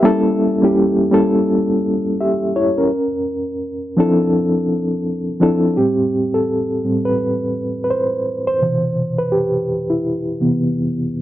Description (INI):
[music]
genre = R&B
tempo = 84 BPM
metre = 4/4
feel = swing 61% on 16ths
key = unclear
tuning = A4 = 440 Hz
[part]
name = reed electric piano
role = solo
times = 0.0-11.2 s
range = A2 to E5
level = -15 LUFS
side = equal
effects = fast tremolo
[sound]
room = digital ambience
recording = dry, close 1970s-style studio recording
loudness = -15 LUFS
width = side -13 dB against mid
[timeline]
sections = 0.0-5.8 A section; 5.8-11.2 B section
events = reed electric piano solo 5.8-11.2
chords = 0.0 A7b9; 2.9 Dm9; 5.8 Am9; 8.6 Cmaj7